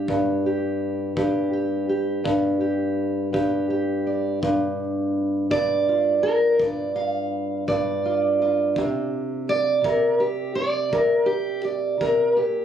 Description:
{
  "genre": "acoustic country blues, solo or duo",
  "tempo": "55 BPM (dotted quarters)",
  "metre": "12/8",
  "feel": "straight",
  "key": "unclear",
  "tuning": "A4 = 440 Hz",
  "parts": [
    { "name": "fingerpicked steel-string acoustic guitar", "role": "melody", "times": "0.0-12.6 s", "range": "G2 to F5", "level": "-20 LUFS", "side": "right 1 dB", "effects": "none" },
    { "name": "kick drum", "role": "drums", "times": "0.1-12.2 s", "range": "none", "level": "-34 LUFS", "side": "left 2 dB", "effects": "none" }
  ],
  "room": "moderate booth ambience, RT60 0.2 s",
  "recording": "recorded on a phone in the room, studio ambience, compression",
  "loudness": "-20 LUFS",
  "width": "side -9 dB against mid",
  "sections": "0.0-4.4 A section; 4.4-12.6 B section",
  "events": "steel-string acoustic guitar solo 4.4-12.6",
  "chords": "0.0 G5; 8.8 Bb69"
}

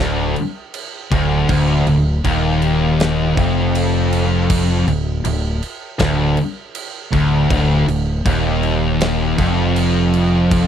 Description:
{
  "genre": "stoner and doom metal",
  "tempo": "80 BPM",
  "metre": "4/4",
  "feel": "straight",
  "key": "unclear",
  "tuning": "A4 = 440 Hz",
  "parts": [
    { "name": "thick fuzz guitar", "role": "riff", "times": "0.0-10.7 s", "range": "D2 to F2", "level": "-20 LUFS", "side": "left 7 dB", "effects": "distortion" },
    { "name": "thick fuzz guitar", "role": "riff", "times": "0.0-10.7 s", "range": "D2 to F2", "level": "-21 LUFS", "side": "right 7 dB", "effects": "distortion" },
    { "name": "tight distorted guitar", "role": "riff", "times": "0.0-10.7 s", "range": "D2 to F2", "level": "-21 LUFS", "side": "equal", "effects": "distortion" },
    { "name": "growling fingered electric bass", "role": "bass", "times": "0.0-10.7 s", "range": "D1 to F1", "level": "-20 LUFS", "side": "equal", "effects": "overdrive, tube saturation" },
    { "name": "big rock drum kit", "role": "drums", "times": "0.4-10.7 s", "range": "crash cymbal, kick drum, snare drum", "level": "-24 LUFS", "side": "equal", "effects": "none" }
  ],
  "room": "little or no reverb",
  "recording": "dry, close 1970s-style studio recording",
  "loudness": "-14 LUFS",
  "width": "side -9 dB against mid",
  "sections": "0.0-10.7 A section",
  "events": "none",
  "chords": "0.0 Dm"
}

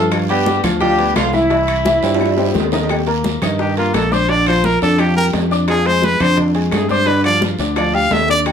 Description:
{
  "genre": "latin, salsa",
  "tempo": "173 BPM",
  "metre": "4/4",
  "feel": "straight",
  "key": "unclear",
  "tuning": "A4 = 440 Hz",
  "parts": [
    { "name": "bright horn section", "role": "melody", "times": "0.0-2.5 s", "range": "E3 to G4", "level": "-17 LUFS", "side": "right 1 dB", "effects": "none" },
    { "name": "clear baby grand piano", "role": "accompaniment", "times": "0.0-8.5 s", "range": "D3 to D6", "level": "-19 LUFS", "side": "left 2 dB", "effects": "none" },
    { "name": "fingered electric bass", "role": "bass", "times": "0.0-8.5 s", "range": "Bb1 to G2", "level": "-19 LUFS", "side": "equal", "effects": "none" },
    { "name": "bongos", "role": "percussion", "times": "0.1-8.5 s", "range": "none", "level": "-26 LUFS", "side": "left 4 dB", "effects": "none" },
    { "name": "claves", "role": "percussion", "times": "0.1-8.5 s", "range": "none", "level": "-29 LUFS", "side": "left 7 dB", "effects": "none" },
    { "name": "congas", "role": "percussion", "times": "0.1-8.5 s", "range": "none", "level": "-24 LUFS", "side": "equal", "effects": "none" },
    { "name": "guiro", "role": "percussion", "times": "0.1-8.5 s", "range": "none", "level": "-31 LUFS", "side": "right 6 dB", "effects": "none" },
    { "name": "timbales", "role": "percussion", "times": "0.1-8.5 s", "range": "none", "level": "-25 LUFS", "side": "right 4 dB", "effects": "none" },
    { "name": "brilliant trumpet", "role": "melody", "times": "3.6-8.4 s", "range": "F4 to F5", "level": "-16 LUFS", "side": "equal", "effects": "none" }
  ],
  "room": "wet studio ambience, RT60 0.5 s",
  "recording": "heard from further back in the room",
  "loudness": "-13 LUFS",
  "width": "side -7 dB against mid",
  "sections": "0.0-2.9 A section; 2.9-8.5 B section",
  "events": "drum fill 2.0-2.9; trumpet solo 2.9-8.5",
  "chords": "0.1 G7; 1.5 C; 2.9 Eb; 4.3 Bb6; 5.7 Fm6; 7.1 G5"
}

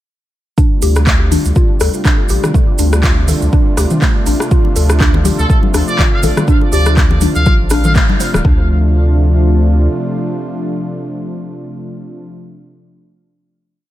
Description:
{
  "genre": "afro house",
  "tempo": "122 BPM",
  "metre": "4/4",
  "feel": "swing 56% on 16ths",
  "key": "D minor",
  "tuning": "A4 = 440 Hz",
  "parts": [
    { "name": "warm analog pad", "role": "sustained chords", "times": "0.6-12.3 s", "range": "C3 to F4", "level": "-20 LUFS", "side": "right 1 dB", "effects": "chorus, sidechain pumping" },
    { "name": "mallet-like synth pluck", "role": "arpeggios", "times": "0.6-8.7 s", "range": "A3 to C5", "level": "-21 LUFS", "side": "left 2 dB", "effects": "chorus, phaser, sidechain pumping, tape echo" },
    { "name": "electronic kick drum", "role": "drums", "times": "0.6-8.6 s", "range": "none", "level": "-12 LUFS", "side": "equal", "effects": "none" },
    { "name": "maracas", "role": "percussion", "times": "0.6-8.4 s", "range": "none", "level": "-26 LUFS", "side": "right 6 dB", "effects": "none" },
    { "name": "warm sub bass", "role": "bass", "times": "0.8-9.9 s", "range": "D1 to D2", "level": "-13 LUFS", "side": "equal", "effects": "sidechain pumping" },
    { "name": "afro-pop drum kit", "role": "drums", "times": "0.8-8.4 s", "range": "handclaps, hi-hat, rim click, toms", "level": "-19 LUFS", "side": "left 1 dB", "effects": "none" },
    { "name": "congas", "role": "percussion", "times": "4.6-8.4 s", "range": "none", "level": "-20 LUFS", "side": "left 4 dB", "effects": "none" },
    { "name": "trumpet with metal mute", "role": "melody", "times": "5.4-8.0 s", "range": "A4 to F5", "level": "-21 LUFS", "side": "left 1 dB", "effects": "tape echo" }
  ],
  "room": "little or no reverb",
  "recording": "echo-heavy mix",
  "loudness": "-10 LUFS",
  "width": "side -14 dB against mid",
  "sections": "0.6-8.4 drop; 8.4-12.4 final chord",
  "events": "drop 0.6-8.4; band accent 8.0",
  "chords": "0.6 F69; 4.5 Dm7"
}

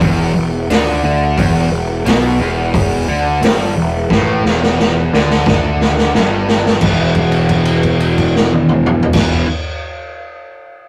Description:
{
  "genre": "blues rock power trio and southern rock",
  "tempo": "88 BPM",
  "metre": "4/4",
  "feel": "straight",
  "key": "unclear",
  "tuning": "A4 = 439 Hz",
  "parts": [
    { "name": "overdriven electric guitar", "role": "riff", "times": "0.0-9.5 s", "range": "E2 to E3", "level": "-18 LUFS", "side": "equal", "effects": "none" },
    { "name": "fuzz picked electric bass", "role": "bass", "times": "0.0-9.4 s", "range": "E1 to D2", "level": "-20 LUFS", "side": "equal", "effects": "overdrive" },
    { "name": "raw garage drum kit", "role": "drums", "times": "0.0-9.3 s", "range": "crash cymbal, hi-hat, kick drum, snare drum, toms", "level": "-18 LUFS", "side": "equal", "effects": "none" }
  ],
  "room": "moderate small room ambience, RT60 0.5 s",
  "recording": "rough rehearsal-room recording, warm saturation",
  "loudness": "-14 LUFS",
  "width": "mono",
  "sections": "0.0-6.8 A section; 6.8-9.6 B section",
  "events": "drum fill 4.1-6.8; held note 6.8-9.1",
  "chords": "0.0 E5"
}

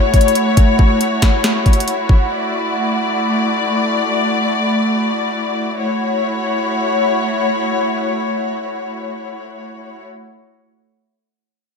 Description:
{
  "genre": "hip hop, trap",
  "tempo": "free time",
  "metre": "none",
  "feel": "none",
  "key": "F# minor",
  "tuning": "A4 = 441 Hz",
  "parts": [
    { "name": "muted studio string section", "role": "sustained chords", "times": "0.0-10.0 s", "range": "A3 to D5", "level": "-16 LUFS", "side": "left 2 dB", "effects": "none" },
    { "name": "trap drum kit", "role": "drums", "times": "0.1-2.2 s", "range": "hi-hat, kick drum, snare drum", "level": "-12 LUFS", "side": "equal", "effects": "none" }
  ],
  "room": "moderate plate reverb, RT60 1.4 s",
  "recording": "dreamy mix soaked in reverb",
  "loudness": "-14 LUFS",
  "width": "side -5 dB against mid",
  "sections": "0.0-5.8 A section; 5.8-9.3 B section",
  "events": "none",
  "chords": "0.0 F#m7; 2.3 Dadd9; 5.8 F#m7"
}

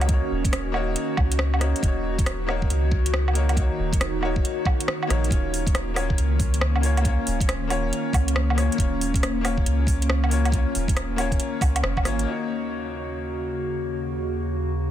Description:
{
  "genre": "future garage",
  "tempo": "138 BPM",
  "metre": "4/4",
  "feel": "swing 65% on 16ths",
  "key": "Eb minor",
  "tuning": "A4 = 439 Hz",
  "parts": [
    { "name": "bright upright piano", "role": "accompaniment", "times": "0.0-14.9 s", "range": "Bb3 to Db5", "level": "-30 LUFS", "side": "left 4 dB", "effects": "sidechain pumping, tape echo" },
    { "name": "warbly tape-like pad", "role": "sustained chords", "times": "0.0-14.9 s", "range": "Eb2 to Gb4", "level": "-28 LUFS", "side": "equal", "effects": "chorus, built-in reverb, phaser, sidechain pumping" },
    { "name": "soft dub sub bass", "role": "bass", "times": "0.0-12.3 s", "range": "Eb1 to Db2", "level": "-24 LUFS", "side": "equal", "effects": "sidechain pumping" },
    { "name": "garage drum kit", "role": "drums", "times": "0.0-12.3 s", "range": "hi-hat, rim click, woodblock", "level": "-29 LUFS", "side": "right 1 dB", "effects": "small room reverb, soft clipping on snare" },
    { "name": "electronic kick drum", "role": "drums", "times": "0.1-12.0 s", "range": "none", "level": "-23 LUFS", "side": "equal", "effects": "small room reverb" }
  ],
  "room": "little or no reverb",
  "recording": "dense, heavily limited modern master",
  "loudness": "-21 LUFS",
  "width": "side -11 dB against mid",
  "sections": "0.0-12.3 A section; 12.3-14.9 B section",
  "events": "none",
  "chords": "0.0 Ebm7; 5.3 Bbm/Eb; 12.3 Ebm7"
}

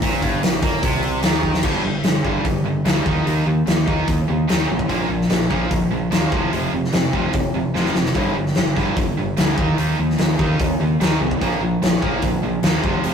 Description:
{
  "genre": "classic rock",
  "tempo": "147 BPM",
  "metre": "4/4",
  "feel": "straight",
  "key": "unclear",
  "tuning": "A4 = 439 Hz",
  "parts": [
    { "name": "distorted electric guitar", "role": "riff", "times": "0.0-13.1 s", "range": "F2 to Eb4", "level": "-25 LUFS", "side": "left 4 dB", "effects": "overdrive" },
    { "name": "tight distorted guitar", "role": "riff", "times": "0.0-13.1 s", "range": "F2 to Eb4", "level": "-24 LUFS", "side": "right 4 dB", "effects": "distortion" },
    { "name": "growling picked electric bass", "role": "bass", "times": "0.0-13.1 s", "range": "F1 to Bb2", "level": "-23 LUFS", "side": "equal", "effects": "overdrive" },
    { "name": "huge arena drum kit", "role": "drums", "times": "0.0-13.1 s", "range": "crash cymbal, hi-hat, kick drum, snare drum", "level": "-20 LUFS", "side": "left 1 dB", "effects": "none" }
  ],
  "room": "moderate studio reverb, RT60 0.6 s",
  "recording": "rough rehearsal-room recording, warm saturation",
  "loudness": "-17 LUFS",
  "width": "side -7 dB against mid",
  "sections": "0.0-1.6 A section; 1.6-13.1 B section",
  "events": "drum fill 1.4, 7.7-8.1",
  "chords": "0.0 Bb5; 1.6 G5; 3.1 Eb5; 4.9 Bb5; 6.3 F5; 8.1 G5; 9.6 Eb5; 11.4 Bb5"
}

